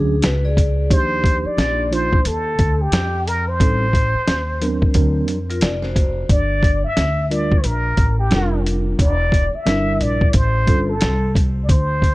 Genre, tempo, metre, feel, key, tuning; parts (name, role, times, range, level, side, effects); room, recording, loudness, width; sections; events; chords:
hip hop, jazz-hop; 89 BPM; 4/4; swing 62% on 16ths; A4 = 440 Hz
vibraphone with medium hard mallets; second line; 0.0-0.9, 5.5-6.3 s; D4 to D5; -27 LUFS; left 2 dB
mellow tine electric piano; accompaniment; 0.0-10.9 s; F3 to Bb4; -24 LUFS; right 2 dB; medium stereo tremolo
upright bass; bass; 0.0-12.1 s; E1 to F2; -20 LUFS; equal; transformer saturation
dusty soul sampler-style drum kit; drums; 0.2-12.1 s; hi-hat, kick drum, snare drum; -17 LUFS; equal; overdrive
trumpet with plunger mute; melody; 0.9-12.1 s; G4 to E5; -22 LUFS; left 1 dB
small room ambience; worn, warbling old tape, cassette tape, warbly pitch drift; -15 LUFS; side -19 dB against mid
0.0-12.1 A section
0.0 E13 (rootless); 0.9 Ebmaj9; 3.6 Am7b5; 4.9 D7alt; 6.3 Gm7; 9.0 Em7b5; 10.3 A7alt